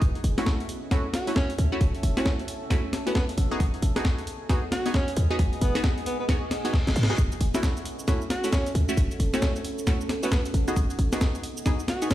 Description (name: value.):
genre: UK garage, two-step garage.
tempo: 134 BPM.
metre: 4/4.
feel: swing 62% on 16ths.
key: F# dorian.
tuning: A4 = 441 Hz.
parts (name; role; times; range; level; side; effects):
short 808-style bass; bass; 0.0-11.1 s; F#1 to G#2; -24 LUFS; equal; none.
breakbeat sampler-style drum kit; drums; 0.0-12.1 s; hi-hat, shaker, snare drum; -30 LUFS; equal; none.
electronic kick drum; drums; 0.0-12.1 s; none; -25 LUFS; equal; none.
deep dark ambient pad; texture; 0.0-12.1 s; B3 to F#5; -35 LUFS; right 1 dB; chorus, built-in reverb, sidechain pumping.
punchy chord stab; stabs; 0.4-12.1 s; A3 to G#4; -31 LUFS; equal; chorus, ping-pong delay.
breathy alto saxophone; melody; 1.1-12.1 s; B3 to F#4; -32 LUFS; right 1 dB; ping-pong delay.
reverse cymbal; sound effects; 6.5-7.2 s; none; -36 LUFS; left 1 dB; none.
room: light reverb.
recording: played on a big sound system in a bare room, stone room reverb.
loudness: -23 LUFS.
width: side -14 dB against mid.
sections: 0.0-12.1 A section.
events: reverse cymbal 6.5-7.2; drum fill 6.7-7.2.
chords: 0.0 F#m7; 3.4 G#m7; 7.2 F#m7; 10.5 G#m7.